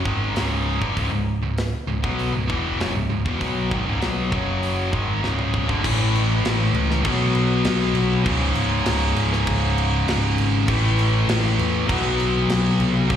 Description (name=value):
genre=hard rock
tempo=99 BPM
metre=4/4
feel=straight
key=C# minor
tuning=A4 = 440 Hz
part: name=scooped high-gain guitar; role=riff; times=0.0-13.2 s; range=C#2 to B3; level=-25 LUFS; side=right 8 dB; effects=distortion
part: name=sludgy distorted guitar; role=riff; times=0.0-13.2 s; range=C#2 to B3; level=-24 LUFS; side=left 9 dB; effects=overdrive, slapback echo
part: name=overdriven picked electric bass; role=bass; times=0.1-13.2 s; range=C#1 to E2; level=-23 LUFS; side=right 1 dB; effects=none
part: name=tight metal drum kit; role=drums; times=0.1-13.2 s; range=crash cymbal, hi-hat, kick drum, snare drum, toms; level=-27 LUFS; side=right 1 dB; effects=none
room=studio reverb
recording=live gig heard through the venue's PA, recital hall reverb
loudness=-19 LUFS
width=side -9 dB against mid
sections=0.0-5.8 A section; 5.8-13.2 B section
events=drum fill 5.2-5.8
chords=0.1 C#m; 4.3 F#5; 4.9 C#5; 5.8 A; 7.1 B5; 8.3 C#5; 10.7 A5; 11.9 B5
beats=0.36 | 0.97 1.58 2.19 2.79 | 3.40 4.01 4.62 5.23 | 5.84 6.45 7.05 7.66 | 8.26 8.87 9.47 10.08 | 10.68 11.29 11.89 12.49 | 13.09